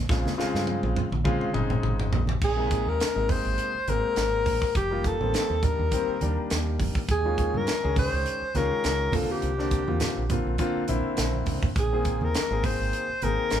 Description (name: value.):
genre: electric jazz fusion.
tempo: 103 BPM.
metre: 4/4.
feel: swing 54% on 16ths.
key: Bb dorian.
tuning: A4 = 441 Hz.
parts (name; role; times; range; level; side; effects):
woody fretless electric bass; bass; 0.0-13.6 s; F1 to G2; -29 LUFS; right 1 dB; none.
clear concert grand piano; accompaniment; 0.1-13.6 s; C3 to Ab4; -30 LUFS; left 2 dB; none.
tight funk drum kit; drums; 0.1-13.6 s; crash cymbal, hi-hat, kick drum, snare drum, toms; -29 LUFS; equal; none.
congas; percussion; 0.3-13.4 s; none; -33 LUFS; right 3 dB; none.
warm alto saxophone; melody; 2.4-13.6 s; G4 to C5; -27 LUFS; left 2 dB; none.
room: light reverb.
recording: band playing live in one room.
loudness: -23 LUFS.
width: side -10 dB against mid.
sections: 0.0-2.4 A section; 2.4-13.6 B section.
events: drum fill 0.1-2.4, 11.2-11.8.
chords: 0.0 Bbm11; 2.4 Bb9sus4; 4.8 F9sus4; 7.1 Eb9sus4; 9.1 C9sus4; 11.8 Bb9sus4.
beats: | 0.09 0.67 1.25 1.84 | 2.42 3.00 3.58 4.17 | 4.75 5.33 5.92 6.50 | 7.09 7.67 8.26 8.84 | 9.42 10.01 10.59 11.18 | 11.76 12.35 12.93 13.51.